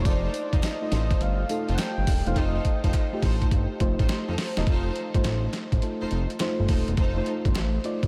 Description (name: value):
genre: R&B, new jack swing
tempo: 104 BPM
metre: 4/4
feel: swing 66% on 16ths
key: unclear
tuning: A4 = 440 Hz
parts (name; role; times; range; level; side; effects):
- soft octave-layered synth lead; melody; 0.0-3.2 s; Db5 to G5; -38 LUFS; equal; chorus, diffuse ambient delay
- mellow FM electric piano; accompaniment; 0.0-8.1 s; A3 to Eb5; -33 LUFS; equal; chorus
- warm studio string section; stabs; 0.0-7.2 s; Eb4 to C5; -37 LUFS; equal; diffuse ambient delay
- fat analog bass; bass; 0.0-8.1 s; Eb1 to F2; -29 LUFS; equal; none
- boom bap sampler-style drum kit; drums; 0.1-8.1 s; hi-hat, kick drum, snare drum, tambourine; -28 LUFS; equal; none
- group handclap; percussion; 0.6-7.7 s; none; -51 LUFS; equal; none
room: moderate huge ambient reverb, RT60 7.6 s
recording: dreamy mix soaked in reverb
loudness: -25 LUFS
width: mono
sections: 0.0-4.7 A section; 4.7-8.1 B section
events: drum fill 2.4-4.7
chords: 0.0 F7